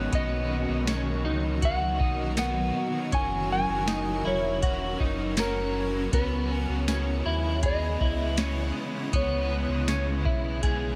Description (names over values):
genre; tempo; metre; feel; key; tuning
dream pop; 80 BPM; 4/4; straight; C# dorian; A4 = 440 Hz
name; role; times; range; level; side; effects
mellow electric guitar; melody; 0.0-11.0 s; A#4 to G#5; -34 LUFS; equal; tape echo
biting overdriven guitar; accompaniment; 0.0-11.0 s; F#2 to G#4; -40 LUFS; equal; harmonic tremolo, ensemble chorus
shimmering ambient pad; sustained chords; 0.0-11.0 s; B2 to A#4; -36 LUFS; equal; chorus, built-in reverb, tremolo
clean electric guitar; arpeggios; 0.0-11.0 s; B3 to G#4; -35 LUFS; equal; ensemble chorus, tape echo
sub bass with octave; bass; 0.0-11.0 s; E1 to D#2; -33 LUFS; equal; none
glockenspiel with soft plastic mallets; texture; 0.0-11.0 s; B5 to G#6; -46 LUFS; equal; tape echo
soft vintage rhythm box; drums; 0.1-10.8 s; hi-hat, kick drum, snare drum, tambourine; -31 LUFS; equal; overdrive
room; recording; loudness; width
light reverb, digital ambience; none; -27 LUFS; mono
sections
0.0-11.0 A section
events
none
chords
0.1 Bmaj7; 3.1 F#7; 6.1 C#m7